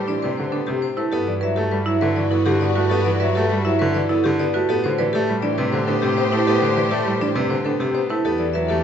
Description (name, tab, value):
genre	classical, minimalist pattern music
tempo	101 BPM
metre	3/4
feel	straight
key	A dorian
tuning	A4 = 439 Hz
part	vibraphone with medium hard mallets	melody	0.0-8.8 s	G4 to E5	-25 LUFS	left 12 dB	none
part	warm clarinet	second line	0.0-8.8 s	F#4 to G4	-30 LUFS	right 2 dB	none
part	clear baby grand piano	accompaniment	0.0-8.8 s	C3 to B3	-24 LUFS	equal	none
part	warm symphonic string section	sustained chords	0.0-8.8 s	F#4 to D5	-30 LUFS	left 6 dB	none
part	rich double bass	bass	0.0-8.8 s	E2 to A2	-26 LUFS	right 3 dB	none
part	marimba with medium hard mallets	arpeggios	0.1-8.8 s	D4 to B4	-23 LUFS	right 4 dB	none
room	wet recital hall reverb, RT60 1.6 s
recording	dark, warm production, nothing above 7.9 kHz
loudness	-18 LUFS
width	side -8 dB against mid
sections	0.0-8.8 A section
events	none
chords	0.0 Am9; 1.1 Gmaj9; 4.7 Am9; 8.3 Em11